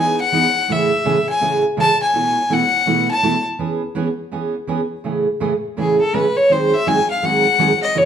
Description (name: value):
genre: country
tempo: 165 BPM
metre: 4/4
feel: swing 65% on 8ths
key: unclear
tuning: A4 = 440 Hz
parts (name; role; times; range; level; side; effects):
- clear fiddle; melody; 0.0-3.4, 5.8-8.1 s; G#4 to A5; -16 LUFS; left 2 dB; none
- picked steel-string acoustic guitar; accompaniment; 0.0-8.1 s; F#2 to G#4; -19 LUFS; right 3 dB; none
room: moderate stone room reverb, RT60 1.1 s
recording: band playing live in one room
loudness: -15 LUFS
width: side -8 dB against mid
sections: 0.0-5.0 A section; 5.0-8.1 A section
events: fiddle solo 0.0-5.0, 5.0-8.1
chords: 0.0 Emaj7; 0.7 Amaj7; 2.1 B7sus4; 3.6 E6; 5.0 Amaj7; 6.5 G#7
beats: 0.33 | 0.69 1.05 1.41 1.78 | 2.14 2.50 2.87 3.23 | 3.59 3.95 4.32 4.68 | 5.04 5.41 5.77 6.13 | 6.49 6.86 7.22 7.58 | 7.95